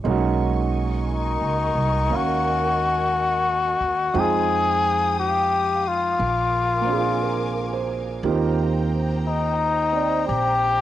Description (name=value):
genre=jazz ballad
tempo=59 BPM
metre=4/4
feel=swing 66% on 8ths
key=Eb major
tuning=A4 = 441 Hz
part: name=warm grand piano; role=accompaniment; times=0.0-10.8 s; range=G#3 to G5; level=-26 LUFS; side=right 7 dB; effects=none
part: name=upright bass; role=bass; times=0.0-10.8 s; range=Bb1 to F2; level=-26 LUFS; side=right 1 dB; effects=none
part: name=warm symphonic string section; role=sustained chords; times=0.1-10.8 s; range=A#4 to Eb6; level=-33 LUFS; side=equal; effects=none
part: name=trumpet with cup mute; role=melody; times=1.1-10.8 s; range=Eb4 to Ab4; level=-21 LUFS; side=left 4 dB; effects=cassette tape
room=moderate booth ambience, RT60 0.3 s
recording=home recording on cassette, nothing above 11.0 kHz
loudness=-19 LUFS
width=side -12 dB against mid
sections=0.0-10.8 A section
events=none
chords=0.0 Bmaj13; 4.1 Fm9; 6.2 Bb7; 8.2 Eb6